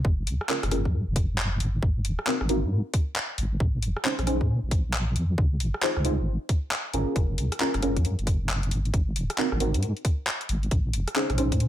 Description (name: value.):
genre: UK garage, two-step garage.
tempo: 135 BPM.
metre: 4/4.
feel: swing 63% on 16ths.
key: unclear.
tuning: A4 = 441 Hz.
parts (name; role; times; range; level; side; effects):
deep soft wobble bass; bass; 0.0-11.7 s; Eb1 to Bb2; -26 LUFS; equal; chorus.
electronic kick drum; drums; 0.0-11.6 s; none; -24 LUFS; equal; none.
garage drum kit; drums; 0.3-11.7 s; handclaps, hi-hat, rim click; -30 LUFS; left 1 dB; none.
deep mellow chord stab; stabs; 0.5-11.5 s; C4 to C5; -28 LUFS; right 1 dB; chorus, phaser, ping-pong delay.
room: light reverb, digital ambience.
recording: none.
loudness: -24 LUFS.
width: side -12 dB against mid.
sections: 0.0-11.7 A section.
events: none.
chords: 0.0 Gbmaj9; 1.6 Ab9; 3.6 Bbm11; 5.4 Dbmaj7; 7.2 Gbmaj9; 8.7 Ab9; 10.7 Bbm11.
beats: | 0.05 0.49 0.94 1.38 | 1.82 2.27 2.71 3.16 | 3.60 4.05 4.49 4.94 | 5.38 5.83 6.27 6.71 | 7.16 7.60 8.05 8.49 | 8.94 9.38 9.82 10.27 | 10.71 11.16 11.60.